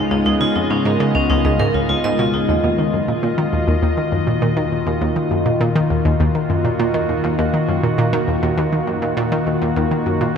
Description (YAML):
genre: ambient, sequencer-driven space music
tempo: 101 BPM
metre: 4/4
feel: straight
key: Eb minor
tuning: A4 = 440 Hz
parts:
  - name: evolving wavetable pad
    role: sustained chords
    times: 0.0-10.4 s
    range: Db3 to Eb5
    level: -19 LUFS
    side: left 1 dB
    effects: chorus, built-in reverb
  - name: vibraphone with hard mallets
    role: arpeggios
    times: 0.0-2.5 s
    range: Db4 to Eb5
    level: -22 LUFS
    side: right 2 dB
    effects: auto-pan, analog delay
  - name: analog pluck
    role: riff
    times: 0.0-10.3 s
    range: Db2 to Eb3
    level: -19 LUFS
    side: equal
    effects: chorus, analog delay
  - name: bubbling stepped-filter texture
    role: texture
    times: 0.0-2.5 s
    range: Ab5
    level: -39 LUFS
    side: right 3 dB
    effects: none
room: wet cathedral reverb, RT60 6.4 s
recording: in a vast, echoing space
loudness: -16 LUFS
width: side -7 dB against mid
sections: 0.0-2.5 A section; 2.5-10.4 A section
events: none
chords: 0.0 Db7; 2.5 Ebmadd9